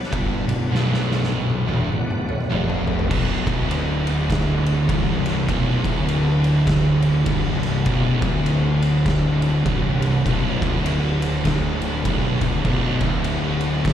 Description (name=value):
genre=stoner and doom metal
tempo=101 BPM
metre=4/4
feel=swing 61% on 8ths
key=B minor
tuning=A4 = 440 Hz
part: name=bright tonewheel organ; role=sustained chords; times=0.0-13.9 s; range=F#3 to F#4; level=-33 LUFS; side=equal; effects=slow rotary speaker, chorus vibrato
part: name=oversized low-tuned drum kit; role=drums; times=0.0-13.9 s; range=crash cymbal, kick drum, ride cymbal, snare drum, toms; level=-24 LUFS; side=equal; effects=none
part: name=sludgy distorted guitar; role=riff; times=0.1-13.9 s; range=B1 to G2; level=-28 LUFS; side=equal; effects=overdrive
part: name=thick fuzz guitar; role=riff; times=0.1-13.9 s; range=B1 to G2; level=-25 LUFS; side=left 6 dB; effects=distortion
part: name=thick fuzz guitar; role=riff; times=0.1-13.9 s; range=B1 to G2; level=-24 LUFS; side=right 5 dB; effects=distortion
part: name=fuzz picked electric bass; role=bass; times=0.1-13.9 s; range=B0 to G1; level=-25 LUFS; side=equal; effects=overdrive
room=little or no reverb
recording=live gig heard through the venue's PA, recital hall reverb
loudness=-18 LUFS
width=side -10 dB against mid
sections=0.0-3.1 A section; 3.1-13.9 B section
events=drum fill 0.7-3.1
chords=0.0 Bm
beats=0.12 | 0.72 1.32 1.91 2.51 | 3.10 3.70 4.29 4.89 | 5.48 6.08 6.67 7.26 | 7.86 8.46 9.05 9.65 | 10.25 10.85 11.45 12.05 | 12.65 13.25 13.85